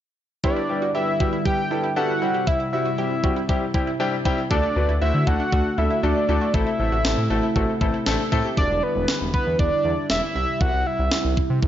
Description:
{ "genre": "synth-pop", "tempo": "118 BPM", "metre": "4/4", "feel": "straight", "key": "E minor", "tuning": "A4 = 440 Hz", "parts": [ { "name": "fat analog lead", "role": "melody", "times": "0.4-11.4 s", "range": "B4 to G5", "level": "-24 LUFS", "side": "equal", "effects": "chorus, slapback echo" }, { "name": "clear concert grand piano", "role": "accompaniment", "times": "0.4-8.5 s", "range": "G3 to C5", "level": "-25 LUFS", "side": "left 4 dB", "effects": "none" }, { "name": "chorused pulse-width pad", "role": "sustained chords", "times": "0.4-11.7 s", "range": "C3 to F#4", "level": "-29 LUFS", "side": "right 2 dB", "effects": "none" }, { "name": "analog pluck", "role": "arpeggios", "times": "0.4-8.5 s", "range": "D4 to G4", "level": "-32 LUFS", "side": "right 6 dB", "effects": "chorus, slapback echo" }, { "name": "clean 12-bit digital drum machine", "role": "drums", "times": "0.4-11.7 s", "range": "kick drum, snare drum", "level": "-23 LUFS", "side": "equal", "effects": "gated reverb" }, { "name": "smooth synth bass", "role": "bass", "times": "4.5-11.7 s", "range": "E1 to D3", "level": "-24 LUFS", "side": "equal", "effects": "none" } ], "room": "moderate concert hall reverb, RT60 1.9 s", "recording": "nothing above 7.5 kHz", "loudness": "-19 LUFS", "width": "side -11 dB against mid", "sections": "0.4-8.6 A section; 8.6-11.7 B section", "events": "none", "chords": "0.4 Em7; 2.2 C; 4.5 D; 6.5 Am; 8.6 Em7; 10.4 C" }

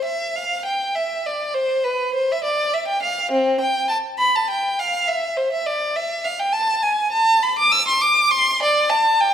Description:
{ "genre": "classical, baroque-style suite movement for unaccompanied violin", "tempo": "68 BPM (dotted quarters)", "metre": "6/8", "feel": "rubato", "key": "C major", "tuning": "A4 = 444 Hz", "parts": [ { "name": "rich violin", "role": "solo", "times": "0.0-9.3 s", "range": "C4 to E6", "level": "-17 LUFS", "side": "equal", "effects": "none" } ], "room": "moderate recital hall reverb, RT60 1.6 s", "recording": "minimal, uncompressed stereo recording", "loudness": "-17 LUFS", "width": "side -9 dB against mid", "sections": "0.0-9.3 A section", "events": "none", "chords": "none" }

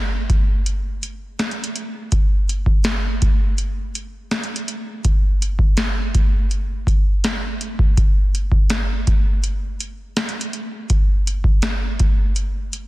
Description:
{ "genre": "R&B", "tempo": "82 BPM", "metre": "4/4", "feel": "straight", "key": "none", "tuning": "none", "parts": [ { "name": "booming analog drum machine", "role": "drums", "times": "0.3-12.9 s", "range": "hi-hat, kick drum, snare drum", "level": "-18 LUFS", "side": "equal", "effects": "overdrive, vintage 12-bit sampler grit" } ], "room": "little or no reverb", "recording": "dense, heavily limited modern master", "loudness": "-17 LUFS", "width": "side -18 dB against mid", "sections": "0.0-12.9 A section", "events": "none", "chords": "none" }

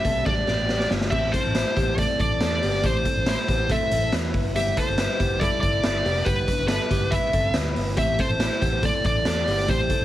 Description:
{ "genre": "jangly indie pop", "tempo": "140 BPM", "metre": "4/4", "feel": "straight", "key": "A minor", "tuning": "A4 = 440 Hz", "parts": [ { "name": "high-gain lead guitar", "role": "melody", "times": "0.0-10.0 s", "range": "B4 to E5", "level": "-25 LUFS", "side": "equal", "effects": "distortion, ping-pong delay" }, { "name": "electric guitar at the edge of break-up", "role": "accompaniment", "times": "0.0-10.0 s", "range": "G3 to B4", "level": "-33 LUFS", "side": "right 5 dB", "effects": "none" }, { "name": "direct-recorded clean electric guitar", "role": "arpeggios", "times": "0.0-10.0 s", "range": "A3 to C5", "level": "-30 LUFS", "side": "left 3 dB", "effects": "lush chorus, ping-pong delay" }, { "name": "raw garage drum kit", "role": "drums", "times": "0.0-10.0 s", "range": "crash cymbal, hi-hat, kick drum, snare drum", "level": "-25 LUFS", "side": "equal", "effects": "none" }, { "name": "vintage muted fingered electric bass", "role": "bass", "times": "0.1-10.0 s", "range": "F1 to E2", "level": "-28 LUFS", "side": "equal", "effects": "none" } ], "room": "moderate studio reverb, RT60 0.5 s", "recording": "vinyl crackle", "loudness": "-20 LUFS", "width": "side -13 dB against mid", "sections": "0.0-1.1 A section; 1.1-10.0 B section", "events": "drum fill 0.3-1.1", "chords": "0.0 Gsus2; 1.1 Am; 4.3 Em" }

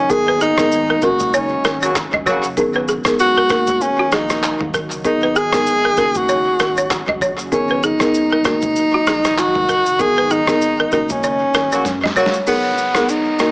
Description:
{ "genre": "afrobeats", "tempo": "97 BPM", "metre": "4/4", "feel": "swing 58% on 16ths", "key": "G# minor", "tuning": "A4 = 440 Hz", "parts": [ { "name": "breathy tenor saxophone", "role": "melody", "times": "0.0-13.5 s", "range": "B3 to G#4", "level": "-16 LUFS", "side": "equal", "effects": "tape echo" }, { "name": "deep dark ambient pad", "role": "sustained chords", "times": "0.0-13.5 s", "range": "A#2 to F#4", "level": "-29 LUFS", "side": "right 1 dB", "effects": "chorus, built-in reverb, sidechain pumping" }, { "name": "saturated sub bass", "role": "bass", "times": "0.0-12.3 s", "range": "D#1 to F#2", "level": "-34 LUFS", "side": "equal", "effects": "none" }, { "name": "folk marimba with medium mallets", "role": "accompaniment", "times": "0.1-13.5 s", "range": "A#3 to A#4", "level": "-21 LUFS", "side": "equal", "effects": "none" }, { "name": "boom bap sampler-style drum kit", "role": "drums", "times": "0.1-13.5 s", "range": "handclaps, kick drum, rim click, shaker, snare drum, toms", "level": "-22 LUFS", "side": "equal", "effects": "tape echo" }, { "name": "balafon", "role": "riff", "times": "0.3-12.3 s", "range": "F#4 to D#5", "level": "-20 LUFS", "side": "right 1 dB", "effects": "tape echo" }, { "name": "mellow horn section", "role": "second line", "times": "1.8-2.5, 11.7-12.4 s", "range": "C#3 to F#4", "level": "-22 LUFS", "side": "equal", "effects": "tape echo" }, { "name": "downlifter", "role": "sound effects", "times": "12.5-13.5 s", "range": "none", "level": "-27 LUFS", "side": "equal", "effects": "none" } ], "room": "light reverb, small room ambience", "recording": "echo-heavy mix, small speaker sound", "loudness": "-14 LUFS", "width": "side -29 dB against mid", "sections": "0.0-12.5 A section; 12.5-13.5 B section", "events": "band accent 0.1-2.6, 10.0-12.5; drum fill 11.8-12.5", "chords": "0.1 G#madd9; 1.0 F#; 2.6 G#madd9; 3.5 D#m; 5.0 G#madd9; 6.0 F#; 7.5 G#madd9; 8.4 D#m; 10.0 G#madd9; 10.9 F#; 12.5 G#madd9" }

